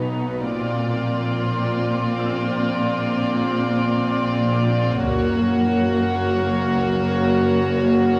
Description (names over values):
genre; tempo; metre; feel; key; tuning
cinematic, suspense film score; 53 BPM; 4/4; straight; unclear; A4 = 443 Hz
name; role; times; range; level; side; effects
warm symphonic violin section; melody; 0.0-8.2 s; B4 to D5; -31 LUFS; equal; none
warm symphonic violin section; second line; 0.0-8.2 s; D#4 to F#4; -27 LUFS; equal; none
dark chamber viola section; accompaniment; 0.0-8.2 s; A#3 to B#3; -26 LUFS; equal; none
warm studio cello section; bass; 0.0-8.2 s; F#2 to B2; -28 LUFS; equal; none
warm symphonic double bass section; bass; 0.0-8.2 s; F#1 to B1; -30 LUFS; equal; none
bowed-like drone; drone; 0.0-8.2 s; F#1 to B1; -33 LUFS; equal; none
concert harp; texture; 0.0-5.6 s; E6; -46 LUFS; equal; none
taiko ensemble; drums; 5.0-7.3 s; none; -34 LUFS; equal; none
room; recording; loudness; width
wet scoring stage reverb, RT60 1.6 s; none; -21 LUFS; mono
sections
0.0-8.2 A section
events
none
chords
0.0 B; 0.5 A#add9; 5.0 F#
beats
| 0.50 1.63 2.77 3.90 | 5.03 6.16 7.29